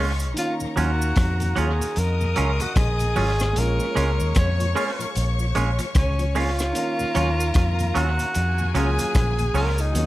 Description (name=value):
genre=lovers rock reggae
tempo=75 BPM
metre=4/4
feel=swing 60% on 16ths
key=Eb minor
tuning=A4 = 440 Hz
part: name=clear studio string section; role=second line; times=0.0-10.1 s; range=Gb4 to Eb6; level=-33 LUFS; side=left 5 dB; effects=tape echo
part: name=clear concert grand piano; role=accompaniment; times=0.0-10.1 s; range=Eb3 to F5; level=-33 LUFS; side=equal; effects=tape echo
part: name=mellow tonewheel organ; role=accompaniment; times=0.0-9.6 s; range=Eb2 to Ab4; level=-34 LUFS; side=left 3 dB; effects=overdrive, chorus vibrato, slow rotary speaker
part: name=twangy electric guitar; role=stabs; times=0.0-9.7 s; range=Gb3 to F4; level=-28 LUFS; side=right 5 dB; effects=spring reverb
part: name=vintage muted fingered electric bass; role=bass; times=0.0-10.1 s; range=Ab1 to F2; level=-23 LUFS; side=equal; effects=none
part: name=crunchy breakbeat drum kit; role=drums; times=0.2-10.1 s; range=hi-hat, kick drum, rim click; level=-26 LUFS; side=equal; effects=tape echo
part: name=cabasa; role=percussion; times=0.2-10.1 s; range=none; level=-39 LUFS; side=right 3 dB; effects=none
part: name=breathy tenor saxophone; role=melody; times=0.4-10.1 s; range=Db4 to Db5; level=-27 LUFS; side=equal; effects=tape echo
room=little or no reverb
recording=none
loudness=-20 LUFS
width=side -16 dB against mid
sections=0.0-10.1 A section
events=none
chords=0.4 Ebm9; 3.6 Bbm7; 6.8 Ebm9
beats=| 0.36 1.16 1.96 2.76 | 3.56 4.36 5.16 5.96 | 6.75 7.55 8.35 9.15 | 9.95